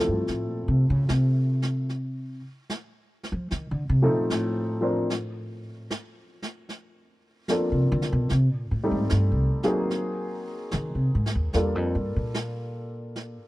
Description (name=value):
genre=jazz ballad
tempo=74 BPM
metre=4/4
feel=swing 66% on 8ths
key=F major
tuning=A4 = 443 Hz
part: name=warm baby grand piano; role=accompaniment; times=0.0-13.5 s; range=F3 to C5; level=-28 LUFS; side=left 1 dB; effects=none
part: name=upright bass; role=bass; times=0.0-13.4 s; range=C2 to F3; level=-24 LUFS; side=equal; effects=none
part: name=brushed snare drum and snare drum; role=drums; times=0.3-13.5 s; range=none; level=-33 LUFS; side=right 1 dB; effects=none
room=small room ambience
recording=dry, close 1970s-style studio recording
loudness=-23 LUFS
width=side -18 dB against mid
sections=0.0-13.5 A section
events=upright bass solo 0.0-13.5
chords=0.0 Fmaj7; 1.9 N.C.; 3.5 F7; 5.1 Bbmaj9; 8.3 Am7b5; 9.9 Ab9; 11.5 Gm9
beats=0.27 1.08 | 1.89 2.70 3.50 4.30 | 5.10 5.90 6.70 7.50 | 8.30 9.10 9.91 10.73 | 11.55 12.36 13.17